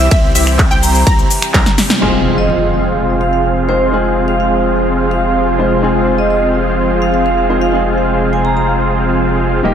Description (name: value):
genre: EDM, festival progressive house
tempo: 126 BPM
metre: 4/4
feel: straight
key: F minor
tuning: A4 = 440 Hz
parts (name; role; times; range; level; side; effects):
- vibraphone with medium hard mallets; melody; 0.0-8.6 s; C5 to Bb5; -19 LUFS; right 2 dB; digital delay
- lush unison pad; sustained chords; 0.0-9.7 s; C3 to G4; -20 LUFS; equal; chorus, vintage 12-bit sampler grit, sidechain pumping
- wide unison pluck; arpeggios; 0.0-1.7 s; E5 to Bb5; -21 LUFS; equal; sidechain pumping, digital delay
- dense compressed supersaw; riff; 0.0-9.7 s; Bb3 to Bb5; -17 LUFS; right 1 dB; sidechain pumping, low-pass filter, digital delay
- saturated sub bass; bass; 0.0-9.7 s; Eb1 to C2; -19 LUFS; equal; sidechain pumping
- big-room dance drum kit; drums; 0.0-2.1 s; crash cymbal, finger snaps, handclaps, hi-hat, ride cymbal, shaker, snare drum; -16 LUFS; equal; overdrive, low-pass filter on cymbals, low-pass filter on perc, low-pass filter on hats, low-pass filter on snare
- electronic kick drum; drums; 0.1-1.6 s; none; -12 LUFS; equal; overdrive
- warm concert grand piano; accompaniment; 2.0-9.7 s; G3 to C5; -20 LUFS; left 1 dB; vintage 12-bit sampler grit, sidechain pumping, digital delay
- impact; sound effects; 2.0-3.9 s; none; -22 LUFS; equal; none
room: moderate lush hall reverb, RT60 1.7 s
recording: none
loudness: -11 LUFS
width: side -8 dB against mid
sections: 0.0-2.0 A section; 2.0-9.7 B section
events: drop 0.0-2.0; drum fill 1.5-2.0; band accent 1.9; impact 2.0-3.9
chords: 0.0 C; 2.0 Fm